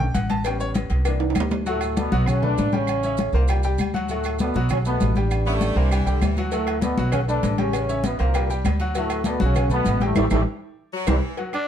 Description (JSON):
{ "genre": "latin, salsa", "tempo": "198 BPM", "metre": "4/4", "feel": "straight", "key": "D major", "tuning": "A4 = 440 Hz", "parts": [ { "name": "bright grand piano", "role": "accompaniment", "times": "0.0-11.7 s", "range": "E3 to D6", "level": "-28 LUFS", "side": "left 3 dB", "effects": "none" }, { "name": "upright bass", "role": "bass", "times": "0.0-11.2 s", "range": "A1 to D2", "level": "-23 LUFS", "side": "right 1 dB", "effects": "none" }, { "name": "congas", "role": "percussion", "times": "0.0-11.7 s", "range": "none", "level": "-27 LUFS", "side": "left 4 dB", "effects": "none" }, { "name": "cowbell", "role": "percussion", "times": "0.1-1.5, 6.5-11.7 s", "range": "none", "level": "-34 LUFS", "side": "left 9 dB", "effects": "none" }, { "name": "maracas", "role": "percussion", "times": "0.1-11.1 s", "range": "none", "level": "-42 LUFS", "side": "right 7 dB", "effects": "none" }, { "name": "agogo bells and timbales", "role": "percussion", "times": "0.2-11.7 s", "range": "none", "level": "-32 LUFS", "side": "right 8 dB", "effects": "none" }, { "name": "claves", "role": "percussion", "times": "0.4-11.7 s", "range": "none", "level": "-38 LUFS", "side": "right 5 dB", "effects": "none" }, { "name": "mellow trombone section", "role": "melody", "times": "1.7-11.2 s", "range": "G2 to D4", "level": "-25 LUFS", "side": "equal", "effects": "none" }, { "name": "edgy saxophone section", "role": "second line", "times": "5.5-6.5, 10.9-11.4 s", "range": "D3 to B3", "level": "-30 LUFS", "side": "left 1 dB", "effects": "none" }, { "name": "raspy tenor saxophone", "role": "melody", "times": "11.5-11.7 s", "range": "D4", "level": "-25 LUFS", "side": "right 2 dB", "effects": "none" } ], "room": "light reverb", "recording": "dark, warm production", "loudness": "-20 LUFS", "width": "side -9 dB against mid", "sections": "0.0-1.7 A section; 1.7-11.4 B section", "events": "grand piano solo 0.0-1.7; drum fill 1.2-1.7, 10.2-11.4; band accent 10.2-11.4", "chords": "0.5 A7; 1.1 C7; 1.7 D; 2.3 Bm7; 2.9 A7; 3.5 C5; 4.1 D; 4.7 B5; 5.3 A7; 5.9 C5; 6.5 D; 7.1 Bm7; 7.7 A7; 8.3 C5; 9.0 D; 9.6 B5; 10.2 A5; 10.8 C7" }